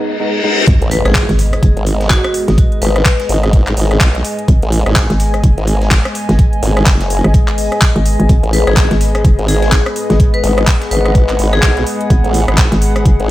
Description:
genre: bass house.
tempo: 126 BPM.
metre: 4/4.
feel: swing 59% on 16ths.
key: G# minor.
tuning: A4 = 442 Hz.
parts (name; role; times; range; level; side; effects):
percussive organ stab; stabs; 0.0-0.6 s; G#3 to D#4; -19 LUFS; equal; ensemble chorus, sidechain pumping, analog delay.
reverse cymbal and impact; sound effects; 0.1-2.6 s; none; -18 LUFS; left 1 dB; none.
dark analog pad; sustained chords; 0.7-13.3 s; G#3 to G#5; -22 LUFS; left 1 dB; chorus, sidechain pumping.
hollow knocking FM bass; bass; 0.7-13.2 s; F#1 to G#1; -14 LUFS; equal; tube saturation, sidechain pumping, high-pass filter.
breakbeat sampler-style drum kit; drums; 0.7-13.2 s; hi-hat, snare drum; -30 LUFS; equal; none.
electronic kick drum; drums; 0.7-13.2 s; none; -11 LUFS; equal; small room ambience.
garage drum kit; drums; 0.7-13.3 s; handclaps, hi-hat, rim click; -19 LUFS; equal; small room ambience.
warbly tape-like pad; texture; 1.4-13.3 s; B3 to G#5; -23 LUFS; left 2 dB; chorus, built-in reverb, phaser, sidechain pumping.
formant-sweep wobble bass; bass; 0.8-13.3 s; F#1 to B1; -14 LUFS; equal; chorus, tube saturation, sidechain pumping.
vibraphone with hard mallets; melody; 0.9-3.3, 8.5-11.7 s; F#4 to B4; -20 LUFS; left 3 dB; analog delay.
room: light reverb.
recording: none.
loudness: -10 LUFS.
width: side -15 dB against mid.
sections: 0.7-13.3 A section.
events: break 0.0-0.7; reverse cymbal 0.1-0.7; drop 0.7-13.3; impact 0.7-2.6.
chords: 0.0 G#m.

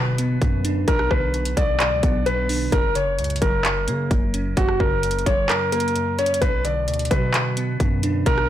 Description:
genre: hip hop, trap.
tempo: 130 BPM.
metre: 4/4.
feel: half-time.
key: B harmonic minor.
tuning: A4 = 445 Hz.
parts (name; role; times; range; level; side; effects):
felt-muted upright piano; melody; 0.0-8.5 s; F#4 to D5; -23 LUFS; left 1 dB; low-pass filter.
glassy digital keys; accompaniment; 0.0-8.5 s; F#2 to D4; -26 LUFS; equal; chorus, low-pass filter.
long sustained 808-style bass; bass; 0.0-8.5 s; F#1 to C#3; -26 LUFS; equal; none.
impact; sound effects; 0.0-0.9 s; none; -40 LUFS; right 1 dB; none.
trap drum kit; drums; 0.2-8.5 s; handclaps, hi-hat, kick drum, rim click; -22 LUFS; equal; none.
room: little or no reverb.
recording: blown-out, overdriven recording, overdrive.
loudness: -18 LUFS.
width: side -11 dB against mid.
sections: 0.0-8.5 A section.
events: impact 0.0-0.9; kick muted 5.5-6.4.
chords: 0.0 Bm; 2.7 F#; 6.4 Bm.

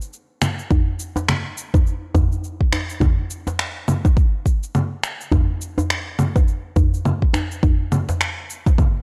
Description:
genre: downtempo.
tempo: 104 BPM.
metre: 4/4.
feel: swing 59% on 16ths.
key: none.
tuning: none.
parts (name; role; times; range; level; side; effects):
electronic cabasa, finger snaps and congas; drums; 0.0-8.9 s; none; -24 LUFS; equal; overdrive.
electronic kick drum; drums; 0.7-8.9 s; none; -19 LUFS; equal; overdrive.
djembe; percussion; 0.7-8.8 s; none; -25 LUFS; equal; none.
room: little or no reverb.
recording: dry, gritty hardware recording, cassette tape.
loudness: -20 LUFS.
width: mono.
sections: 0.0-9.0 A section.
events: none.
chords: none.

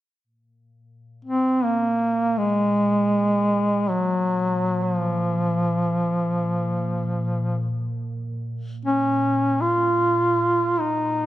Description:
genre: caucasian folk, Caucasian lament.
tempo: free time.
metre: none.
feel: none.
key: Bb minor.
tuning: A4 = 435 Hz.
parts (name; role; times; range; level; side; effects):
glassy FM pad; drone; 1.7-11.3 s; Bb2; -30 LUFS; equal; ensemble chorus, built-in reverb.
warm duduk; melody; 1.2-11.3 s; F3 to F4; -20 LUFS; equal; none.
room: moderate concert hall reverb, RT60 2.0 s.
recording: none.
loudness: -20 LUFS.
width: side -14 dB against mid.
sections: 0.3-11.3 A section.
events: none.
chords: none.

